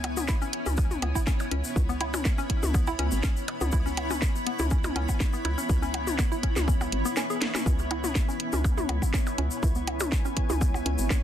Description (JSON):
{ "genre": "minimal techno", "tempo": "122 BPM", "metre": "4/4", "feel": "swing 53% on 16ths", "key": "C# minor", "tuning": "A4 = 440 Hz", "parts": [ { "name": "hollow knocking FM bass", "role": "bass", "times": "0.0-11.1 s", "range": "G#1 to C#2", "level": "-30 LUFS", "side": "equal", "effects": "sidechain pumping" }, { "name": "garage drum kit", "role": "drums", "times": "0.0-11.2 s", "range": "hi-hat, snare drum", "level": "-31 LUFS", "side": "equal", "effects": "none" }, { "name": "electronic percussion blips and toms", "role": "percussion", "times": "0.0-10.8 s", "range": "none", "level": "-34 LUFS", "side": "left 3 dB", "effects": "tape echo" }, { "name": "granular cloud pad", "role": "texture", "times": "0.0-11.2 s", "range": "B3 to B5", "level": "-33 LUFS", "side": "left 1 dB", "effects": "built-in reverb, sidechain pumping" }, { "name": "hollow square pluck", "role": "riff", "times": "0.2-11.1 s", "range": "B3 to G#4", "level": "-35 LUFS", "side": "equal", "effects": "chorus, sidechain pumping, digital delay" }, { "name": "egg shaker", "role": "percussion", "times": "0.2-11.2 s", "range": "none", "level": "-39 LUFS", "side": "left 5 dB", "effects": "none" }, { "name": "electronic kick drum", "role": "drums", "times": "0.3-11.2 s", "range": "none", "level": "-26 LUFS", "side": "equal", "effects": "none" } ], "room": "light reverb", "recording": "dense, heavily limited modern master", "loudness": "-24 LUFS", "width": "side -10 dB against mid", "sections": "0.0-11.2 A section", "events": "drum fill 7.4", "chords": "0.0 C#m7", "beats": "0.29 0.78 1.27 | 1.76 2.25 2.75 3.24 | 3.73 4.22 4.71 5.20 | 5.70 6.19 6.68 7.17 | 7.66 8.15 8.65 9.14 | 9.63 10.12 10.61 11.11" }